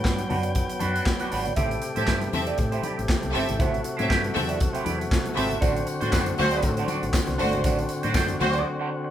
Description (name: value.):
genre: disco.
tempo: 119 BPM.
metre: 4/4.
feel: swing 56% on 16ths.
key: A dorian.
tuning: A4 = 440 Hz.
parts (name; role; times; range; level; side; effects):
overdriven tonewheel organ; sustained chords; 0.0-9.1 s; C3 to G5; -29 LUFS; left 2 dB; none.
fingered electric bass with an envelope filter; bass; 0.0-8.6 s; G1 to A2; -31 LUFS; equal; none.
modern studio drum kit; drums; 0.0-8.6 s; handclaps, hi-hat, kick drum, snare drum; -27 LUFS; equal; none.
semi-hollow electric guitar; accompaniment; 0.2-9.1 s; D4 to D5; -29 LUFS; right 5 dB; wah.
congas; percussion; 0.2-8.5 s; none; -36 LUFS; left 2 dB; none.
bright symphonic string section; second line; 2.0-8.5 s; A3 to E5; -29 LUFS; left 1 dB; none.
tambourine; percussion; 5.6-8.5 s; none; -43 LUFS; left 6 dB; none.
mellow horn section; stabs; 6.1-8.6 s; A3 to C5; -29 LUFS; equal; none.
room: moderate large studio reverb, RT60 1.1 s.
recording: band playing live in one room.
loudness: -22 LUFS.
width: side -11 dB against mid.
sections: 0.0-1.6 A section; 1.6-9.1 B section.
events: break 8.7-9.1.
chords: 0.0 Gmaj7; 1.6 Am7; 5.6 D7.